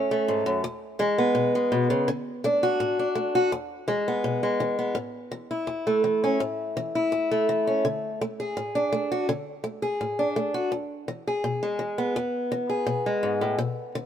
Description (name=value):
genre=country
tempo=167 BPM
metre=4/4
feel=straight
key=E mixolydian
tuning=A4 = 437 Hz
part: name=picked old ladder-braced acoustic guitar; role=solo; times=0.0-14.1 s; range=E2 to G#4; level=-24 LUFS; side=equal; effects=none
room=light reverb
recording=minimal, uncompressed stereo recording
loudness=-24 LUFS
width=side -9 dB against mid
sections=0.0-5.0 A section; 5.0-14.1 B section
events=none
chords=0.0 A; 0.6 E; 2.1 D; 3.5 E; 5.0 A5; 7.8 D5; 10.7 E